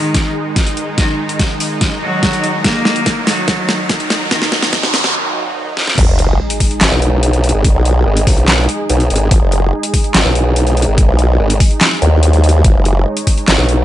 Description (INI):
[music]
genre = heavy wobble dubstep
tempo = 144 BPM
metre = 4/4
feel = half-time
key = G# minor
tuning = A4 = 436 Hz
[part]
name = bright cello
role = melody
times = 0.0-4.6 s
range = D#3 to A#3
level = -20 LUFS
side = left 1 dB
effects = ping-pong delay
[part]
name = supersaw pad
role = sustained chords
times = 0.0-13.8 s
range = D#3 to C#5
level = -21 LUFS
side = right 1 dB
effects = sidechain pumping, low-pass filter
[part]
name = riser, noise sweep and sub drop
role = sound effects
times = 1.5-7.6 s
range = none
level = -22 LUFS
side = right 1 dB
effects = none
[part]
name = dubstep drum kit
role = drums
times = 0.1-13.8 s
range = crash cymbal, handclaps, hi-hat, snare drum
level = -16 LUFS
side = equal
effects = overdrive, small room ambience
[part]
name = electronic kick drum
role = drums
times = 0.1-13.4 s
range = none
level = -13 LUFS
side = equal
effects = overdrive, small room ambience
[part]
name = formant-sweep wobble bass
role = bass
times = 6.0-13.6 s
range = F#1 to D#2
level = -11 LUFS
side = equal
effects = chorus, overdrive
[part]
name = formant-sweep wobble bass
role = bass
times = 6.9-13.8 s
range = G#1 to B1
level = -12 LUFS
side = equal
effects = chorus, overdrive
[sound]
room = light reverb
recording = high-pass filter, nothing above 10.6 kHz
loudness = -11 LUFS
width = side -13 dB against mid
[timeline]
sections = 0.0-6.0 A section; 6.0-13.8 B section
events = build-up 0.0-6.0; drum fill 0.0-5.1, 5.8; filter sweep 0.0-6.0; riser 1.5-5.1; noise sweep 4.3-6.0; break 5.1-6.0; drop 6.0-13.8; impact 6.0-7.6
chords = 0.0 G#5